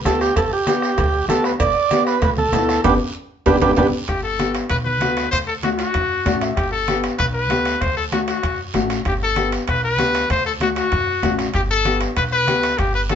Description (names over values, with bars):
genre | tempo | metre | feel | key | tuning
latin, cumbia | 193 BPM | 4/4 | straight | G major | A4 = 439 Hz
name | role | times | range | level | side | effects
clear upright piano | accompaniment | 0.0-13.2 s | A3 to E5 | -22 LUFS | left 3 dB | none
upright bass | bass | 0.0-13.2 s | G1 to F#2 | -26 LUFS | equal | none
combo organ | melody | 0.1-3.9 s | D4 to D5 | -18 LUFS | right 5 dB | none
bombo | percussion | 0.1-13.2 s | none | -26 LUFS | left 1 dB | none
congas | percussion | 0.1-13.2 s | none | -30 LUFS | right 1 dB | none
cowbell and timbales | percussion | 0.1-13.2 s | none | -28 LUFS | right 5 dB | none
guiro | percussion | 0.1-13.2 s | none | -34 LUFS | right 4 dB | none
bright trumpet | second line | 4.1-13.2 s | F#4 to C5 | -20 LUFS | left 3 dB | none
room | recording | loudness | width
moderate studio reverb, RT60 0.7 s | band playing live in one room, nothing above 7.6 kHz | -17 LUFS | side -8 dB against mid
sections
0.0-4.1 A section; 4.1-13.2 B section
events
band accent 2.8-4.1; drum fill 3.2-4.1; trumpet solo 4.1-13.2; upright piano fill 6.1-6.6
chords
0.0 G; 5.3 D; 6.6 G; 7.8 D; 9.1 G; 10.3 D; 11.5 G